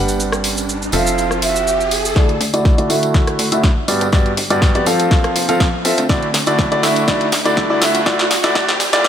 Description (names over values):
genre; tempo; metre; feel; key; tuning
piano house; 122 BPM; 4/4; swing 53% on 16ths; unclear; A4 = 440 Hz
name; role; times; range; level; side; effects
clear concert grand piano; riff; 0.0-9.1 s; G2 to F#5; -16 LUFS; equal; sidechain pumping, low-pass filter, digital delay
plucky analog bass; bass; 0.0-9.1 s; D1 to G2; -27 LUFS; equal; sidechain pumping, high-pass filter
riser; sound effects; 0.0-9.1 s; none; -25 LUFS; equal; none
house drum kit; drums; 0.1-9.1 s; cabasa, hi-hat, rim click, snare drum; -20 LUFS; left 1 dB; high-pass filter on hats, high-pass filter on perc, high-pass filter on snare
tambourine; percussion; 0.1-9.1 s; none; -29 LUFS; right 4 dB; none
mellow concert flute; melody; 0.9-1.9 s; E5 to F5; -20 LUFS; right 4 dB; digital delay
electronic kick drum; drums; 2.2-9.1 s; none; -15 LUFS; equal; none
room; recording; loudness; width
moderate lush hall reverb, RT60 2.0 s, small room ambience; high-pass filter; -13 LUFS; side -9 dB against mid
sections
0.0-2.2 A section; 2.2-9.1 B section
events
riser 0.0-2.2, 2.2-9.1; build-up 2.2-9.1; drum fill 2.2-9.1; filter sweep on grand piano 2.2-9.1; filter sweep 2.2-9.1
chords
0.0 Gmaj7; 0.9 Fmaj7; 2.2 Dadd9; 3.9 Gmaj7; 4.9 Fmaj7; 6.1 Dadd9; 7.8 G5